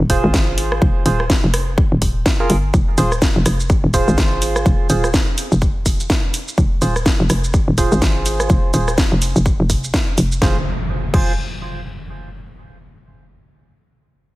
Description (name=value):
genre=bass house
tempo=125 BPM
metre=4/4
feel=swing 59% on 16ths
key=F minor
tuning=A4 = 440 Hz
part: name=hollow knocking FM bass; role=bass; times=0.0-11.4 s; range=Eb1 to Ab1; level=-18 LUFS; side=equal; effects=sidechain pumping
part: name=percussive organ stab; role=stabs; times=0.1-11.3 s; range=F4 to C5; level=-23 LUFS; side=right 3 dB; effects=lush chorus, cassette tape, sidechain pumping, tape echo
part: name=electronic kick drum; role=drums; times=0.1-11.3 s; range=none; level=-17 LUFS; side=equal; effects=studio reverb
part: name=garage drum kit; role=drums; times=0.1-11.3 s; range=crash cymbal, hi-hat, rim click, shaker, snare drum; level=-22 LUFS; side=equal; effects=studio reverb
part: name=impact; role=sound effects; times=10.4-12.3 s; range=none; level=-26 LUFS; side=equal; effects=none
room=digital ambience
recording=heavily compressed radio sound, multiband compression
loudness=-14 LUFS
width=side -18 dB against mid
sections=0.0-10.4 A section; 10.4-12.3 B section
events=filter sweep on synth stab 0.0-10.4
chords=0.0 Fm